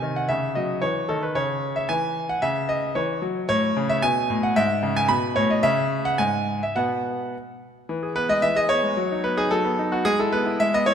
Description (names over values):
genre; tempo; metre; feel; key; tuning
classical-period piano sonatina; 112 BPM; 2/4; rubato; C# minor, E major from 3.5 s; A4 = 438 Hz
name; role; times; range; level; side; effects
bright concert grand piano; solo; 0.0-10.9 s; G#2 to B5; -20 LUFS; equal; none
room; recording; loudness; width
moderate concert hall reverb, RT60 2.0 s; none; -20 LUFS; side -8 dB against mid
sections
0.0-7.9 A section; 7.9-10.9 B section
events
none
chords
0.3 C#m; 1.4 N.C.; 2.4 C#madd9; 3.5 A; 4.0 G#m7; 4.6 E/G#; 5.1 Aadd9; 5.6 C#5; 6.8 N.C.; 7.9 E; 9.0 B/F#; 10.1 E/G#